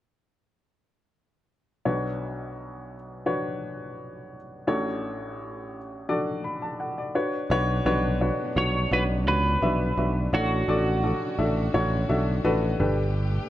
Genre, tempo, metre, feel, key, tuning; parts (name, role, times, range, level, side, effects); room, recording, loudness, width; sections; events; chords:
piano-driven pop; 85 BPM; 4/4; straight; B minor; A4 = 445 Hz
clear upright piano; accompaniment; 1.9-13.5 s; A1 to B5; -27 LUFS; left 1 dB; plate reverb
warm studio string section; sustained chords; 7.5-13.5 s; B2 to G4; -38 LUFS; right 2 dB; plate reverb
picked electric bass; bass; 7.5-13.4 s; G1 to C#2; -25 LUFS; right 1 dB
twelve-string electric guitar; melody; 8.6-11.7 s; F#4 to C#5; -27 LUFS; right 2 dB; plate reverb
moderate studio reverb, RT60 0.6 s; dark, warm production; -23 LUFS; side -13 dB against mid
1.9-7.5 A section; 7.5-13.5 B section
upright piano fill 6.1-7.5
1.9 Bmadd9; 4.7 Dmaj7/A; 7.2 Bmadd9; 10.3 Dmaj7/A; 12.8 Gadd9